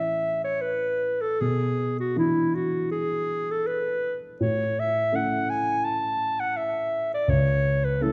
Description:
classical, romantic duo for clarinet and grand piano; 77-85 BPM; 4/4; rubato; A major; A4 = 440 Hz
warm clarinet; melody; 0.0-8.1 s; E4 to A5; -27 LUFS; equal
dark concert grand piano; accompaniment; 0.0-8.1 s; C#2 to E4; -30 LUFS; equal
wet recital hall reverb, RT60 1.6 s; dark, warm production, nothing above 11.0 kHz; -26 LUFS; mono
0.0-8.1 A section
0.0 A; 1.4 E5/B; 4.4 A; 7.3 A/C#

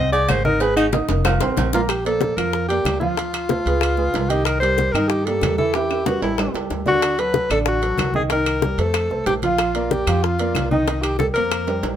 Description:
Afro-Cuban jazz; 187 BPM; 4/4; straight; Bb major; A4 = 440 Hz
warm alto saxophone; melody; 0.0-11.9 s; Eb4 to Eb5; -21 LUFS; left 1 dB
dark grand piano; accompaniment; 0.0-11.9 s; D3 to Ab6; -24 LUFS; right 3 dB
upright bass; bass; 0.0-12.0 s; F1 to G2; -25 LUFS; left 1 dB
agogo bells and timbales; percussion; 0.1-11.9 s; -28 LUFS; right 6 dB
congas; percussion; 0.1-12.0 s; -27 LUFS; left 2 dB
claves; percussion; 0.3-11.7 s; -31 LUFS; left 5 dB
cowbell and bongos; percussion; 0.3-12.0 s; -27 LUFS; left 8 dB
light reverb; minimal, uncompressed stereo recording; -17 LUFS; side -10 dB against mid
0.0-1.9 A section; 1.9-12.0 B section
alto saxophone solo 0.0-1.9; drum fill 0.9-1.9, 5.7-7.0, 11.7
0.0 Fm7 (rootless); 0.6 Ab5; 1.3 F; 1.9 Bb69; 3.2 Dm7; 3.8 Db9; 4.5 Cm7; 5.7 Em; 6.4 A7; 7.0 D; 8.3 Cm7; 9.0 F; 9.6 Bb69; 10.9 Cm7

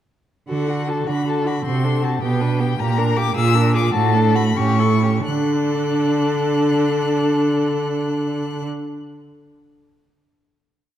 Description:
quick classical-period movement for string quartet; 84-107 BPM (dotted quarters); 6/8; rubato; D major; A4 = 439 Hz
clear violin; melody; 0.5-8.7 s; F#5 to F#6; -26 LUFS; left 7 dB
clear violin; second line; 0.5-8.7 s; F#4 to B4; -24 LUFS; left 4 dB
warm viola; accompaniment; 0.5-8.7 s; A3 to F#4; -24 LUFS; right 1 dB
rich cello; bass; 0.5-8.7 s; A2 to D3; -20 LUFS; right 3 dB
wet concert hall reverb, RT60 2.0 s; -17 LUFS; side -11 dB against mid
0.5-5.3 A section; 5.3-7.9 final chord
slowing down 2.2-5.3
0.5 D; 1.7 D7/C; 2.2 G/B; 2.8 Gm/Bb; 3.4 Bb7; 3.9 D/A; 4.6 A7; 5.3 D

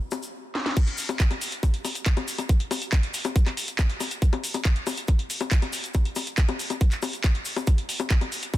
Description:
trance; 139 BPM; 4/4; straight
drum and bass drum kit; drums; 0.1-8.6 s; bongos, crash cymbal, handclaps, hi-hat, snare drum; -29 LUFS; left 2 dB
tube shaker; percussion; 0.1-8.6 s; -36 LUFS; left 2 dB
electronic kick drum; drums; 0.8-8.6 s; -21 LUFS; equal
little or no reverb; dense, heavily limited modern master; -23 LUFS; side -15 dB against mid
0.8-8.6 A section
drum fill 0.6; drop 0.8-8.6

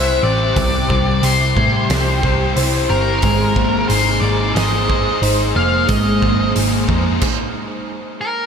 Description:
rock, shoegaze and dream pop; 90 BPM; 4/4; straight; A4 = 440 Hz
octave-fuzz lead guitar; melody; 0.0-8.5 s; Bb4 to F5; -20 LUFS; left 1 dB; distortion, ping-pong delay
fingerpicked twelve-string acoustic guitar; arpeggios; 0.0-6.5 s; G4 to C5; -24 LUFS; left 2 dB; ensemble chorus, ping-pong delay
electric guitar through a small old amp; riff; 0.0-7.2 s; C3 to C5; -23 LUFS; right 9 dB; reverse reverb
thick fuzz guitar; riff; 0.0-7.2 s; C3 to C5; -22 LUFS; left 8 dB; distortion, analog chorus
vintage muted picked electric bass; bass; 0.0-7.2 s; F1 to A2; -19 LUFS; equal
loose indie drum kit; drums; 0.6-7.4 s; crash cymbal, hi-hat, kick drum, snare drum; -22 LUFS; right 1 dB
moderate huge ambient reverb, RT60 6.9 s; dreamy mix soaked in reverb; -14 LUFS; side -7 dB against mid
0.0-8.5 A section
stop 7.2-8.5
0.0 C; 3.2 Abadd9

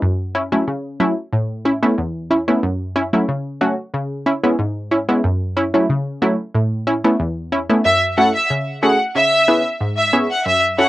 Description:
dancehall; 92 BPM; 4/4; straight; F# minor; A4 = 441 Hz
punchy chord stab; accompaniment; 0.0-10.9 s; E2 to C#5; -17 LUFS; equal; chorus, cassette tape
clear studio violin section; melody; 7.8-10.9 s; E5 to F#5; -15 LUFS; equal; cassette tape
moderate booth ambience, RT60 0.2 s; home recording on cassette; -16 LUFS; side -16 dB against mid
0.0-7.8 A section; 7.8-10.9 B section
0.0 F#m7; 1.3 Aadd9; 2.6 F#m7; 3.9 C#m7; 5.2 F#m7; 6.5 Aadd9; 7.8 F#m7; 9.2 C#m7

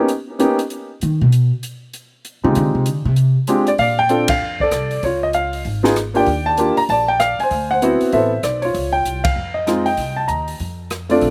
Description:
jazz piano trio; 194 BPM; 4/4; swing 62% on 8ths; Eb major, Bb major from 3.8 s; A4 = 441 Hz
warm concert grand piano; melody; 0.0-11.3 s; Ab3 to Bb5; -19 LUFS; equal; slapback echo
swinging big-band drum kit; drums; 0.1-11.3 s; hi-hat, kick drum, ride cymbal, rim click, snare drum; -29 LUFS; equal
upright bass; bass; 1.0-11.3 s; Ab1 to Eb3; -23 LUFS; equal
little or no reverb; recorded outdoors, with no room sound; -18 LUFS; mono
0.0-3.8 A section; 3.8-11.3 B section
upright bass solo 0.0-3.8; band accent 4.3, 9.2
0.1 Eb(#5, no3); 1.3 N.C.; 2.6 Fm7; 3.2 Csus24; 3.8 Bbmaj7; 5.0 Db; 6.3 Ebmaj9; 7.5 D13; 8.7 Dbmaj9; 10.0 Cm7; 10.6 F

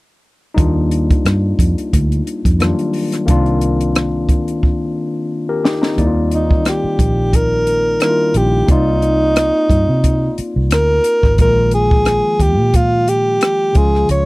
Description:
lush 1970s-style soul; 89 BPM; 4/4; swing 54% on 16ths; Eb major; A4 = 440 Hz
overdriven tine electric piano; accompaniment; 0.5-14.3 s; Db3 to D5; -19 LUFS; left 2 dB
vintage muted fingered electric bass; bass; 0.6-14.3 s; Ab1 to C3; -17 LUFS; equal
compact cocktail drum kit; drums; 0.6-14.3 s; hi-hat, kick drum, rim click, snare drum; -16 LUFS; equal
clear alto saxophone; melody; 6.3-14.3 s; Eb4 to Db5; -15 LUFS; equal
little or no reverb; dry, close 1970s-style studio recording; -12 LUFS; side -21 dB against mid
0.6-6.0 A section; 6.0-14.3 B section
drum fill 4.6-6.0
0.6 Ebmaj9; 3.3 Cm11; 6.0 Ebmaj9; 8.7 Cm11; 11.4 Bb7sus4; 13.8 Db

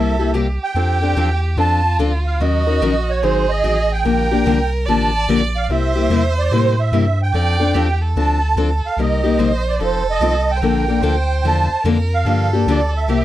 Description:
acoustic string swing (jazz manouche); 146 BPM; 4/4; swing 64% on 8ths; F major; A4 = 440 Hz
musette accordion; melody; 0.0-13.2 s; C5 to A5; -20 LUFS; right 4 dB
warm violin; second line; 0.0-13.2 s; F4 to D5; -25 LUFS; right 4 dB; slapback echo
picked steel-string acoustic guitar; accompaniment; 0.0-13.2 s; C3 to Bb4; -19 LUFS; left 5 dB
round analog bass; bass; 0.0-13.2 s; F1 to A2; -18 LUFS; equal
light reverb; dry, close 1970s-style studio recording; -15 LUFS; side -13 dB against mid
0.8-13.2 A section
0.0 C7; 0.8 F6; 2.4 Ebm7; 3.2 Ab7; 4.1 Bb69; 5.7 C7; 7.3 F6; 9.0 Cm7; 9.8 F7; 10.6 Bbmaj7; 12.3 Gm7

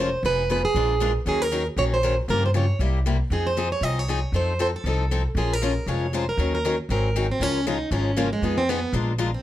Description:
acoustic string swing (jazz manouche); 235 BPM; 4/4; swing 56% on 8ths; A4 = 439 Hz
picked plugged-in steel-string acoustic guitar; melody; 0.0-9.4 s; Ab3 to Eb5; -25 LUFS; right 2 dB; plate reverb
picked steel-string acoustic guitar; accompaniment; 0.0-9.3 s; C3 to Bb4; -27 LUFS; left 4 dB
upright bass; bass; 0.0-9.3 s; F1 to G2; -25 LUFS; equal
moderate studio reverb, RT60 0.6 s; -21 LUFS; side -13 dB against mid
0.0-7.4 A section; 7.4-9.4 B section
0.2 Fm7b5; 0.7 Bb7; 1.3 Ebm7; 2.3 Gm7b5; 2.8 C7; 3.3 Fm7; 4.3 F7; 5.4 Bbm7; 6.4 Ebm7; 6.9 Ab7; 7.4 Db69; 8.4 Fm7b5

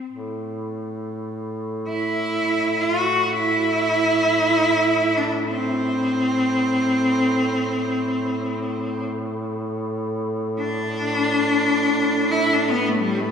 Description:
caucasian folk, Caucasian lament; free time; A dorian; A4 = 439 Hz
warm duduk; drone; 0.1-13.3 s; A2; -27 LUFS; equal
clear cello; melody; 1.9-13.3 s; G3 to F#4; -19 LUFS; equal
wet church reverb, RT60 3.2 s; recorded in a church or concert hall, small room reverb; -19 LUFS; side -7 dB against mid
0.0-13.3 A section
slowing down 8.9-13.3

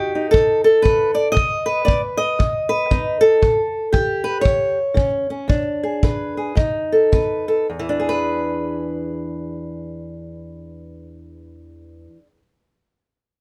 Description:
acoustic country blues, solo or duo; 105-117 BPM; 4/4; swing 64% on 8ths; E mixolydian; A4 = 440 Hz
fingerpicked old ladder-braced acoustic guitar; melody; 0.0-12.4 s; E2 to D#5; -20 LUFS; equal
kick drum; drums; 0.3-7.3 s; -22 LUFS; equal
light reverb; -19 LUFS; mono
0.0-7.7 A section; 7.7-12.2 B section
slowing down 3.4-7.7
0.0 B7; 3.4 A7; 5.5 E7; 6.6 B7; 7.7 E7

